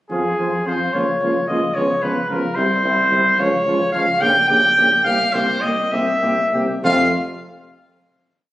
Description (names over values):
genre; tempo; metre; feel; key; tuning
classical, brass quintet; 64-75 BPM (dotted quarters); 6/8; rubato; F minor; A4 = 440 Hz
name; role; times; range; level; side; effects
clear trumpet; melody; 0.1-7.1 s; Ab4 to G5; -17 LUFS; equal; none
warm trumpet; second line; 0.1-7.1 s; E4 to G4; -29 LUFS; right 2 dB; none
dark French horn; accompaniment; 0.1-7.1 s; Ab3 to C4; -27 LUFS; left 1 dB; none
warm trombone; accompaniment; 0.1-7.1 s; C3 to G3; -27 LUFS; right 2 dB; none
clear tuba; bass; 0.1-7.1 s; Bb1 to F2; -25 LUFS; equal; none
room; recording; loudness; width
wet stone room reverb, RT60 1.2 s; recorded on a phone in the room, studio reverb, compression, lossy compression artefacts; -15 LUFS; side -15 dB against mid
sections
0.1-6.8 A section; 6.8-8.5 final chord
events
none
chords
0.1 Fm; 0.9 Bbm/Db; 1.8 Db7; 2.6 C; 3.4 Db; 4.2 Gdim/Bb; 5.1 C5; 6.8 F